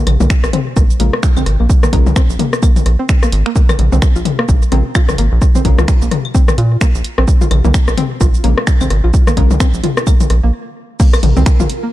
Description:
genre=minimal techno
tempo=129 BPM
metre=4/4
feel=swing 58% on 16ths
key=Bb minor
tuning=A4 = 440 Hz
part: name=rubbery square bass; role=bass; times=0.1-11.7 s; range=Ab1 to Bb2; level=-13 LUFS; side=equal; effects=sidechain pumping
part: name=punchy analog drum machine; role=drums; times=0.1-11.8 s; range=cabasa, crash cymbal, finger snaps, hi-hat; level=-24 LUFS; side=right 2 dB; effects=none
part: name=garage drum kit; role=percussion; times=0.1-11.7 s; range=claves, rim click, toms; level=-18 LUFS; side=left 4 dB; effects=tape echo
part: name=string-like resonator pluck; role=riff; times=0.2-11.9 s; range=Bb3 to F4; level=-23 LUFS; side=right 1 dB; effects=chorus, cassette tape, sidechain pumping, digital delay
part: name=electronic kick drum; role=drums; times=0.3-11.6 s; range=none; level=-12 LUFS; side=equal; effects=none
part: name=wavetable chord stab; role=stabs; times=1.0-9.5 s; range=Ab3 to Bb4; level=-25 LUFS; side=left 2 dB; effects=none
part: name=bubbling stepped-filter texture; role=texture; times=11.0-11.9 s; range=Bb4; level=-28 LUFS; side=right 5 dB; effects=chorus, built-in reverb, sidechain pumping
room=digital ambience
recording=dark, warm production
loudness=-10 LUFS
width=side -15 dB against mid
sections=0.0-11.0 A section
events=filter sweep on synth pluck 0.0-11.0; stop 10.5-11.0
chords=none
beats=0.30 0.77 1.23 | 1.70 2.16 2.62 3.09 | 3.56 4.02 4.49 4.95 | 5.42 5.88 6.35 6.81 | 7.28 7.74 8.21 8.67 | 9.14 9.60 10.07 10.53 | 11.00 11.46

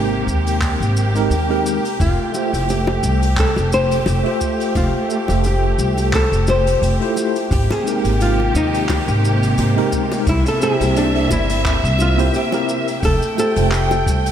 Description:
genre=sunset chillout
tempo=87 BPM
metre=4/4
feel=swing 55% on 16ths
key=F major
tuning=A4 = 441 Hz
part: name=tine electric piano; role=accompaniment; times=0.0-14.3 s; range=Ab3 to E5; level=-23 LUFS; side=moving between left 5 dB and right 5 dB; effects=medium stereo tremolo, auto-pan, ping-pong delay
part: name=dark studio string section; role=sustained chords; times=0.0-14.3 s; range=C3 to G5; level=-22 LUFS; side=equal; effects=none
part: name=upright bass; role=bass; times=0.0-14.3 s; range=F1 to Eb2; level=-19 LUFS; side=equal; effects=none
part: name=electronic kick drum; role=drums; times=0.3-14.2 s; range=none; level=-22 LUFS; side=equal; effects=none
part: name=jazz brush drum kit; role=drums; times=0.3-14.3 s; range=cabasa, handclaps, hi-hat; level=-29 LUFS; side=equal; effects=none
part: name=flamenco guitar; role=melody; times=2.0-14.3 s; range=D4 to C5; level=-21 LUFS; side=left 1 dB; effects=ping-pong delay
part: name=bongos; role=percussion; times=2.3-14.0 s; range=none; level=-30 LUFS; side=left 2 dB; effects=none
room=moderate lush hall reverb, RT60 2.9 s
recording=dreamy mix soaked in reverb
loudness=-15 LUFS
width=side -9 dB against mid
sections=0.0-13.0 A section; 13.0-14.3 B section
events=break 12.3-13.0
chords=0.0 Abmaj9; 2.0 Fmaj9; 7.5 Abmaj9; 10.3 C7; 13.0 Fmaj9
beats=0.62 1.31 | 2.00 2.69 3.38 4.06 | 4.75 5.44 6.13 6.82 | 7.51 8.20 8.89 9.58 | 10.27 10.96 11.65 12.34 | 13.03 13.72

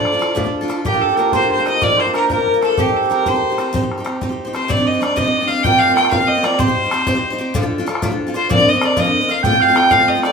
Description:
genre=celtic folk, Celtic slide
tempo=126 BPM (dotted quarters)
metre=12/8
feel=straight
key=C dorian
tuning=A4 = 438 Hz
part: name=bright fiddle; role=melody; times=0.0-10.3 s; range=G4 to G5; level=-17 LUFS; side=left 2 dB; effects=none
part: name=cimbalom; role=second line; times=0.0-10.3 s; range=G4 to G5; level=-19 LUFS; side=right 3 dB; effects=none
part: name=picked steel-string acoustic guitar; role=accompaniment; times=0.0-10.3 s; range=D2 to C5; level=-21 LUFS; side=equal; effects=none
part: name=bodhran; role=percussion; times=0.1-10.3 s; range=none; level=-23 LUFS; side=left 1 dB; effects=none
room=moderate studio reverb, RT60 0.5 s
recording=minimal, uncompressed stereo recording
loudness=-14 LUFS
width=side -5 dB against mid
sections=0.0-4.7 A section; 4.7-10.3 B section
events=none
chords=0.0 Dm; 0.9 Bb; 2.8 Cm; 4.7 Cmadd9; 5.7 Bbsus2; 6.6 Cm; 7.5 Dm; 8.5 Bbadd9; 9.4 F/A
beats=0.37 | 0.85 1.33 1.82 2.30 | 2.78 3.26 3.74 4.22 | 4.70 5.17 5.65 6.12 | 6.60 7.08 7.55 8.02 | 8.50 8.97 9.45 9.92

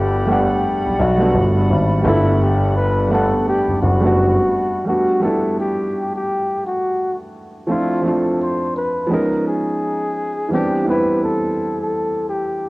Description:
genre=hip hop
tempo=85 BPM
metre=4/4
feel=swing 60% on 16ths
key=G major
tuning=A4 = 440 Hz
part: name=trumpet with bucket mute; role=melody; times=0.0-12.7 s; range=E4 to C5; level=-20 LUFS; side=left 1 dB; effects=low-pass filter, cassette tape
part: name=felt-muted upright piano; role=accompaniment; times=0.0-12.7 s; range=E3 to F#5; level=-20 LUFS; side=right 1 dB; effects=cassette tape, low-pass filter
part: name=warbly tape-like pad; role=sustained chords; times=0.0-4.8 s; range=G3 to B5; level=-30 LUFS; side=equal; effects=chorus, built-in reverb, low-pass filter, cassette tape
part: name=dark concert grand piano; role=bass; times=0.0-4.3 s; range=F#1 to B1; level=-18 LUFS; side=equal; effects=none
room=moderate spring reverb, RT60 1.8 s, studio reverb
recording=home recording on cassette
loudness=-16 LUFS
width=side -21 dB against mid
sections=0.0-4.9 A section; 4.9-12.7 B section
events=none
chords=0.0 Gmaj7; 7.7 Dm7; 9.1 C#9; 10.5 Cmaj7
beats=0.63 1.34 | 2.05 2.75 3.46 4.16 | 4.87 5.58 6.28 6.99 | 7.69 8.40 9.10 9.81 | 10.52 11.22 11.93 12.63

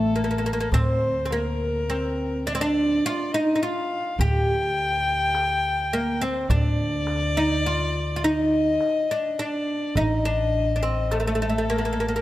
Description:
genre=Arabic maqam ensemble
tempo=104 BPM (eighths)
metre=10/8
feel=straight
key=D maqam kurd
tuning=A4 = 442 Hz
part: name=oud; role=melody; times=0.0-12.2 s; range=A3 to G4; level=-24 LUFS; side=right 1 dB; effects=none
part: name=dark violin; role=second line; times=0.0-12.2 s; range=A4 to G5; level=-26 LUFS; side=left 3 dB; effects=none
part: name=upright bass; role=bass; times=0.0-12.2 s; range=A1 to D2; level=-27 LUFS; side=equal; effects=none
part: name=darbuka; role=percussion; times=0.7-11.4 s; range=none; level=-29 LUFS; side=right 1 dB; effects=none
room=moderate concert hall reverb, RT60 2.5 s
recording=close, detailed microphones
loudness=-21 LUFS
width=side -15 dB against mid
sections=0.0-12.2 A section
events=none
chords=none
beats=0.14 | 0.72 1.30 1.88 2.45 3.03 3.61 4.18 4.76 5.34 5.92 | 6.49 7.07 7.65 8.22 8.80 9.38 9.96 10.53 11.11 11.69

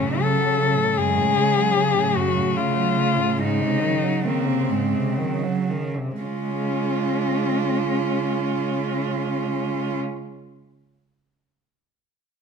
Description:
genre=classical, lyrical piece for cello ensemble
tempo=56-79 BPM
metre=3/4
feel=rubato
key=Db major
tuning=A4 = 440 Hz
part: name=warm cello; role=melody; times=0.0-10.0 s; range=C4 to A4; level=-23 LUFS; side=left 7 dB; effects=none
part: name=warm cello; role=second line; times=0.0-10.0 s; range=Gb3 to F4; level=-26 LUFS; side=right 14 dB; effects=none
part: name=warm cello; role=accompaniment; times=0.0-10.0 s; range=Gb2 to Ab3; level=-27 LUFS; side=equal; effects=none
part: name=rich cello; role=bass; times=0.0-10.0 s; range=Db3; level=-28 LUFS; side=right 3 dB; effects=none
room=moderate recital hall reverb, RT60 1.3 s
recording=close, detailed microphones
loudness=-20 LUFS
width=side -6 dB against mid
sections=0.0-6.2 A section; 6.2-9.2 B section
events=slowing down 0.0-6.2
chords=0.0 Gbm; 3.4 Ab7; 6.2 Db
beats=0.21 | 0.98 1.76 2.57 | 3.40 4.27 5.20 | 6.23 7.23 8.23

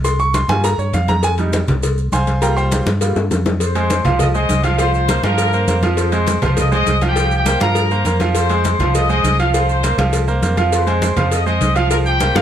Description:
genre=latin, salsa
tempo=202 BPM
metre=4/4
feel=straight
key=F minor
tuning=A4 = 441 Hz
part: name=clear concert grand piano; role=accompaniment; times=0.0-12.4 s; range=F3 to Db6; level=-19 LUFS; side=right 4 dB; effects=none
part: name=fingered electric bass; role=bass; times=0.0-12.4 s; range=C2 to G2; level=-18 LUFS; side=equal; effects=none
part: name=congas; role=percussion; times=0.0-12.4 s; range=none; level=-22 LUFS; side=left 1 dB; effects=none
part: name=cowbell and bongos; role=percussion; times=0.0-12.4 s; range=none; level=-24 LUFS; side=left 5 dB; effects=none
part: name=maracas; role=percussion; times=0.0-12.4 s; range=none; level=-32 LUFS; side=right 7 dB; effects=none
part: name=clear trumpet section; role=melody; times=3.6-12.4 s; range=G4 to Eb6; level=-20 LUFS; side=left 3 dB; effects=none
room=light reverb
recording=none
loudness=-14 LUFS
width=side -10 dB against mid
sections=0.0-3.6 A section; 3.6-12.4 B section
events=grand piano solo 0.0-3.6; drum fill 3.2-3.6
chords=0.0 C7sus4; 1.2 Fm7; 2.4 C7sus4; 3.6 Fm7; 4.8 C7sus4; 6.0 Fm7; 7.2 C7sus4; 8.3 Fm7; 9.5 C7sus4; 10.7 Fm7; 11.9 C7sus4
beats=| 0.04 0.34 0.64 0.93 | 1.23 1.53 1.82 2.12 | 2.42 2.71 3.01 3.31 | 3.60 3.90 4.20 4.49 | 4.79 5.09 5.38 5.68 | 5.98 6.27 6.57 6.87 | 7.16 7.46 7.75 8.05 | 8.35 8.64 8.94 9.24 | 9.54 9.83 10.13 10.43 | 10.72 11.02 11.32 11.61 | 11.91 12.21

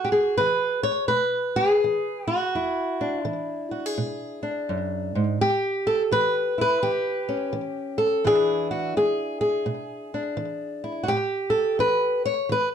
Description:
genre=acoustic country blues, solo or duo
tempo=84 BPM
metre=4/4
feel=swing 63% on 8ths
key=E mixolydian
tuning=A4 = 440 Hz
part: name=fingerpicked old ladder-braced acoustic guitar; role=solo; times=0.0-12.7 s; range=E2 to C#5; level=-22 LUFS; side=equal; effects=slapback echo
room=light reverb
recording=close, detailed microphones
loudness=-22 LUFS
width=side -8 dB against mid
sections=0.0-12.7 A section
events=none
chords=0.0 E7; 5.4 A7; 8.2 E7; 11.1 A7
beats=0.40 1.12 1.83 | 2.55 3.26 3.97 4.69 | 5.40 6.11 6.83 7.54 | 8.25 8.96 9.67 10.38 | 11.09 11.79 12.50

